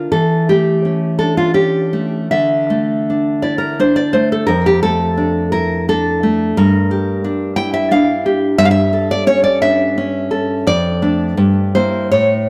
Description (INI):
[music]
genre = romantic piece for solo classical guitar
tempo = 72-90 BPM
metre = 3/4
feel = rubato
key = D minor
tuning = A4 = 440 Hz
[part]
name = nylon-string guitar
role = solo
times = 0.0-12.5 s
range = F2 to G5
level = -15 LUFS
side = equal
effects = none
[sound]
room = moderate plate reverb, RT60 2.5 s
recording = none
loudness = -15 LUFS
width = mono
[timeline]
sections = 0.0-12.5 A section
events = none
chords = 0.1 A7/E; 2.4 D5; 4.5 Dm/F; 6.6 Gm; 8.6 A7/G; 10.7 Dm/F; 11.4 Edim/G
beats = | 0.12 0.84 1.55 | 2.35 3.10 3.81 | 4.50 5.19 5.88 | 6.57 7.24 7.91 | 8.59 9.28 9.97 | 10.67 11.38 12.13